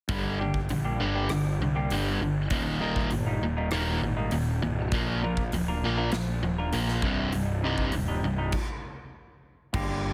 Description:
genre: quiet-loud alternative rock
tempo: 100 BPM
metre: 4/4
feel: straight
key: C minor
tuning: A4 = 440 Hz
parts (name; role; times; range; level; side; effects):
- distorted electric guitar; riff; 0.1-8.5 s; C2 to Bb3; -31 LUFS; equal; distortion
- fuzz picked electric bass; bass; 0.1-10.1 s; C1 to C2; -33 LUFS; equal; overdrive
- big rock drum kit; drums; 0.1-9.9 s; crash cymbal, hi-hat, kick drum, rim click, snare drum; -36 LUFS; equal; none
- semi-hollow electric guitar; arpeggios; 0.2-10.1 s; G2 to Bb4; -37 LUFS; equal; subtle chorus
room: small room ambience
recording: heavily compressed radio sound, multiband compression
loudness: -28 LUFS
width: mono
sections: 0.1-9.7 A section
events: stop 8.5-9.7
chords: 0.1 Gm; 2.5 Eb; 4.9 Bb; 7.0 Cm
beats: | 0.10 0.70 1.30 1.91 | 2.51 3.11 3.72 4.32 | 4.92 5.53 6.13 6.73 | 7.33 7.94 8.54 9.14 | 9.74

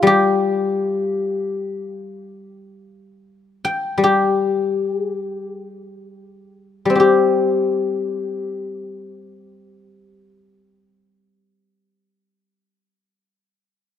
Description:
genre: chinese traditional, Chinese solo plucked strings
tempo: free time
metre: none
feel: none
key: unclear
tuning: A4 = 440 Hz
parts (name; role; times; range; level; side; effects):
- guzheng; solo; 0.0-12.9 s; G3 to G5; -17 LUFS; left 3 dB; none
room: moderate plate reverb, RT60 3.5 s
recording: rough home demo mix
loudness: -17 LUFS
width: side -9 dB against mid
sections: 0.0-7.0 A section; 7.0-10.4 B section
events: slowing down 0.4-7.0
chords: none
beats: free time

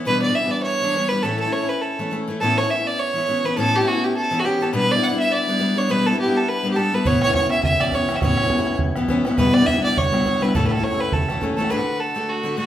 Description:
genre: celtic folk, Celtic reel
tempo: 206 BPM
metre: 4/4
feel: swing 56% on 8ths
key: A mixolydian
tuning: A4 = 440 Hz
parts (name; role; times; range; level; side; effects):
- picked steel-string acoustic guitar; accompaniment; 0.0-12.7 s; D2 to F#4; -21 LUFS; left 2 dB; none
- clear fiddle; melody; 0.1-12.7 s; F#4 to F#5; -21 LUFS; right 1 dB; none
- bodhran; percussion; 7.1-11.7 s; none; -24 LUFS; right 2 dB; none
room: wet large studio reverb, RT60 1.1 s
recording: band playing live in one room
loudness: -18 LUFS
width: side -11 dB against mid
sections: 0.0-2.4 A section; 2.4-11.7 A section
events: none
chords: 0.1 Em7; 1.2 A; 2.4 Aadd9; 4.7 Em7; 7.1 Aadd9; 9.4 Em7; 10.5 A; 11.7 D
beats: | 0.06 0.35 0.65 0.94 | 1.24 1.53 1.82 2.12 | 2.41 2.70 2.99 3.28 | 3.57 3.86 4.16 4.45 | 4.74 5.03 5.32 5.61 | 5.90 6.19 6.48 6.77 | 7.06 7.35 7.64 7.93 | 8.22 8.51 8.80 9.09 | 9.38 9.67 9.96 10.26 | 10.55 10.84 11.13 11.42 | 11.71 12.00 12.29 12.58

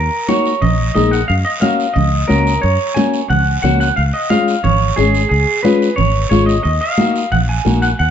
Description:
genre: latin, cumbia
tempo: 179 BPM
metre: 4/4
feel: straight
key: Eb minor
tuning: A4 = 441 Hz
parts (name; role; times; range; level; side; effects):
- clean electric guitar; melody; 0.0-8.1 s; Ab4 to Ab5; -17 LUFS; right 1 dB; spring reverb, plate reverb
- fingered electric bass; bass; 0.0-8.1 s; Ab1 to Gb2; -16 LUFS; equal; none
- nylon-string guitar; accompaniment; 0.3-7.9 s; Ab3 to Ab4; -16 LUFS; left 6 dB; none
- congas; percussion; 0.3-8.1 s; none; -21 LUFS; right 5 dB; none
- guiro; percussion; 0.3-8.1 s; none; -30 LUFS; right 5 dB; none
room: light reverb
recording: dark, warm production, nothing above 7.6 kHz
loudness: -12 LUFS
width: side -9 dB against mid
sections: 0.0-8.1 A section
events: none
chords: 0.0 Ebm; 1.3 Gb; 4.0 Db; 6.7 Ebm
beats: 0.29 0.62 0.96 | 1.29 1.62 1.96 2.29 | 2.63 2.96 3.30 3.63 | 3.97 4.31 4.64 4.98 | 5.31 5.65 5.98 6.32 | 6.65 6.99 7.33 7.66 | 8.00

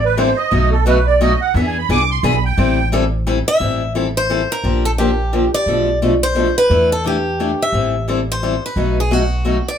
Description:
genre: acoustic string swing (jazz manouche)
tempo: 174 BPM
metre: 3/4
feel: swing 60% on 8ths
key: A minor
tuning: A4 = 440 Hz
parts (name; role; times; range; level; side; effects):
- musette accordion; second line; 0.0-2.9 s; A4 to D6; -17 LUFS; right 6 dB; none
- upright bass; bass; 0.0-9.6 s; A1 to E2; -19 LUFS; equal; none
- picked steel-string acoustic guitar; accompaniment; 0.2-9.6 s; B2 to A4; -19 LUFS; left 3 dB; none
- picked swing-style acoustic guitar; melody; 3.5-9.8 s; F#4 to E5; -18 LUFS; equal; plate reverb
room: wet studio reverb, RT60 0.6 s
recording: heard from further back in the room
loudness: -14 LUFS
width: side -8 dB against mid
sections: 0.0-3.6 A section; 3.6-9.8 B section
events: accordion solo 0.0-3.6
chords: 0.0 Am7; 0.5 B7; 1.5 E7; 2.6 Am7; 4.6 Bb6; 5.7 Bm7b5; 6.7 E7sus4; 7.7 Am7; 8.8 B7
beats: 0.18 | 0.52 0.86 1.21 | 1.55 1.89 2.23 | 2.58 2.92 3.26 | 3.60 3.95 4.29 | 4.64 4.98 5.33 | 5.67 6.01 6.36 | 6.70 7.05 7.39 | 7.74 8.08 8.42 | 8.77 9.11 9.46

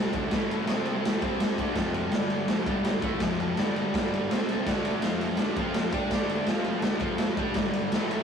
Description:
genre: garage rock duo or trio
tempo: 166 BPM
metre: 4/4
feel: straight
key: unclear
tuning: A4 = 440 Hz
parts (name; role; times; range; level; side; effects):
- overdriven combo organ; sustained chords; 0.0-8.2 s; C4 to E5; -39 LUFS; right 1 dB; none
- overdriven electric guitar; riff; 0.0-8.2 s; F2 to G4; -29 LUFS; left 1 dB; none
- raw garage drum kit; drums; 0.1-8.2 s; kick drum, ride cymbal, snare drum; -27 LUFS; equal; none
room: light reverb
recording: rough rehearsal-room recording, warm saturation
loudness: -25 LUFS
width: side -7 dB against mid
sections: 0.0-8.2 A section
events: none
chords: 0.1 Am; 0.7 C5; 1.1 A5; 1.2 C5; 1.6 D5; 1.8 F5; 2.1 G5; 2.5 F5; 2.7 G5; 3.0 F5; 3.6 G5; 4.3 C5; 4.7 D5; 5.0 F5; 5.4 D5; 5.6 F5; 5.9 D5; 6.5 F5; 6.8 D5; 7.0 F5; 7.4 G5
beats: | 0.32 0.69 1.05 1.41 | 1.78 2.14 2.50 2.86 | 3.22 3.58 3.94 4.30 | 4.67 5.03 5.39 5.75 | 6.12 6.48 6.84 7.21 | 7.57 7.93

